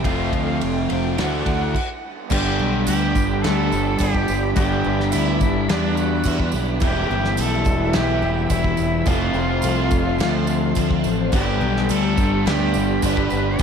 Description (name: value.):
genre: rock, shoegaze and dream pop.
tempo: 106 BPM.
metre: 4/4.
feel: straight.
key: G major.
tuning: A4 = 440 Hz.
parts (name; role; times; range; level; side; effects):
bright reedy jazz flute; melody; 0.0-13.6 s; D4 to G5; -27 LUFS; equal; tape echo.
ensemble organ-string; sustained chords; 0.0-13.6 s; G3 to D6; -31 LUFS; right 1 dB; ensemble chorus.
picked twelve-string acoustic guitar; arpeggios; 0.0-13.6 s; E3 to A4; -34 LUFS; left 7 dB; none.
electric guitar through a small old amp; riff; 0.0-13.6 s; F2 to F#4; -25 LUFS; right 9 dB; reverse reverb.
overdriven semi-hollow guitar; riff; 0.0-13.6 s; D3 to A4; -25 LUFS; left 11 dB; analog chorus.
overdriven semi-hollow guitar; riff; 0.0-1.7, 11.3-13.6 s; G2 to F#4; -28 LUFS; right 1 dB; wide subtle chorus.
growling fingered electric bass; bass; 0.0-13.6 s; E1 to E2; -24 LUFS; equal; overdrive.
loose indie drum kit; drums; 0.0-13.6 s; crash cymbal, kick drum, ride cymbal, snare drum; -25 LUFS; equal; none.
tambourine; percussion; 2.3-13.6 s; none; -37 LUFS; right 15 dB; none.
room: moderate plate reverb, RT60 1.3 s, studio ambience.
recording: dreamy mix soaked in reverb.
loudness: -18 LUFS.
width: side -7 dB against mid.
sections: 0.0-2.3 A section; 2.3-13.6 B section.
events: stop 1.7-2.3.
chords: 0.1 F; 1.2 Dadd9; 2.3 G; 6.8 Em; 9.1 F; 11.3 G.